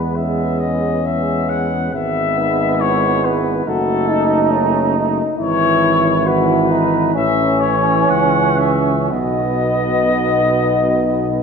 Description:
classical, hymn-like piece for brass band; 55-71 BPM; 4/4; rubato; E major; A4 = 440 Hz
dark cornet; melody; 0.0-11.4 s; A4 to F#5; -19 LUFS; left 6 dB
mellow flugelhorn; second line; 0.0-11.4 s; B3 to E4; -20 LUFS; right 7 dB
mellow trombone; accompaniment; 0.0-11.4 s; B2 to A3; -22 LUFS; right 2 dB
mellow tuba; bass; 0.0-11.4 s; F#1 to E2; -21 LUFS; equal
clear euphonium; accompaniment; 0.2-11.4 s; B3 to F#4; -21 LUFS; left 4 dB
moderate scoring stage reverb, RT60 2.0 s; minimal, uncompressed stereo recording; -14 LUFS; side -6 dB against mid
0.0-11.4 A section
0.0 E; 1.9 E/G#; 3.7 D#dim/F#; 5.4 E/G#; 7.2 A; 9.1 B

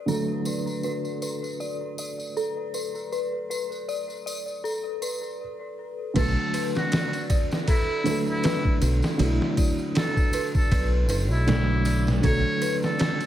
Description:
trip hop; 79 BPM; 4/4; swing 56% on 16ths; B minor; A4 = 438 Hz
felt-muted upright piano; accompaniment; 0.0-13.3 s; D3 to E4; -28 LUFS; right 1 dB; harmonic tremolo, vintage 12-bit sampler grit, tape echo
dark detuned synth bell; arpeggios; 0.0-13.3 s; A4 to D5; -31 LUFS; left 1 dB; chorus, phaser, low-pass filter, dub echo
tambourine; percussion; 0.1-13.3 s; -39 LUFS; equal
trumpet with metal mute; melody; 6.2-13.3 s; E4 to C#5; -30 LUFS; equal; vintage 12-bit sampler grit, tape echo
deep dub fingered electric bass; bass; 6.2-12.4 s; F#1 to B1; -23 LUFS; equal
trip hop sampler-style drum kit; drums; 6.2-13.3 s; crash cymbal, kick drum, ride cymbal, snare drum; -25 LUFS; equal
small room ambience; echo-heavy mix; -23 LUFS; side -12 dB against mid
0.0-6.2 A section; 6.2-13.3 B section
filter sweep on synth bell 0.0-6.2; stop 5.4-6.2
0.0 Bm7

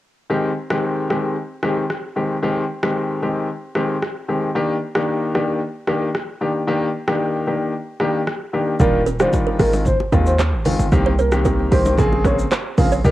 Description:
afrobeats; 113 BPM; 4/4; straight; A4 = 444 Hz
clear grand piano; accompaniment; 0.3-13.1 s; Db3 to Ab4; -20 LUFS; left 1 dB; cassette tape
afro-pop drum kit; drums; 0.7-13.1 s; handclaps, hi-hat, kick drum, rim click, shaker; -22 LUFS; equal; cassette tape
soft octave-layered synth lead; melody; 8.8-13.1 s; Bb4 to F5; -22 LUFS; right 1 dB; chorus, phaser, cassette tape
hard-hitting 808-style bass; bass; 8.8-13.1 s; Eb1 to Eb2; -19 LUFS; right 1 dB
congas and bongos; percussion; 8.8-13.1 s; -24 LUFS; equal
kalimba; riff; 9.1-13.0 s; G4 to Db5; -25 LUFS; right 5 dB; cassette tape, tape echo
light reverb; home recording on cassette; -17 LUFS; side -15 dB against mid
0.3-8.8 A section; 8.8-13.1 B section
0.3 Abmaj7; 4.6 Ebmaj7; 8.8 Ebmaj9; 9.6 Ab6; 10.9 Cm7; 12.0 Bbm9

